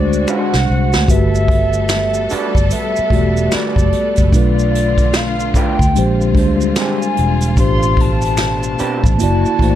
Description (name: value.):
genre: R&B, neo-soul.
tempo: 74 BPM.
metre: 4/4.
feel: swing 62% on 16ths.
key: unclear.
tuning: A4 = 436 Hz.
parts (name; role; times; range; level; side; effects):
hollow clarinet-like synth lead; melody; 0.0-9.8 s; D5 to C6; -20 LUFS; left 1 dB; chorus, phaser, plate reverb.
mellow tine electric piano; accompaniment; 0.0-9.8 s; B2 to D5; -19 LUFS; left 1 dB; medium stereo tremolo, plate reverb.
warm studio string section; sustained chords; 0.0-9.8 s; B2 to A4; -26 LUFS; equal; plate reverb.
vintage muted fingered electric bass; bass; 0.0-9.8 s; E1 to D2; -17 LUFS; equal; none.
maracas and finger snaps; percussion; 0.1-9.6 s; none; -28 LUFS; right 2 dB; none.
electric guitar through a small old amp; second line; 0.3-9.0 s; G#3 to B#4; -25 LUFS; right 4 dB; plate reverb.
vintage brush drum kit; drums; 0.5-9.8 s; hi-hat, kick drum, snare drum; -17 LUFS; equal; none.
room: light reverb.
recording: dark, warm production, faint mains hum.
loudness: -12 LUFS.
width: side -11 dB against mid.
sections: 0.0-9.8 A section.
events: drum fill 0.3-1.1.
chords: 0.0 G#7#11; 1.1 Gmaj9; 4.3 Bm7b5; 5.9 Bb13; 7.6 Am11; 9.2 F#7alt.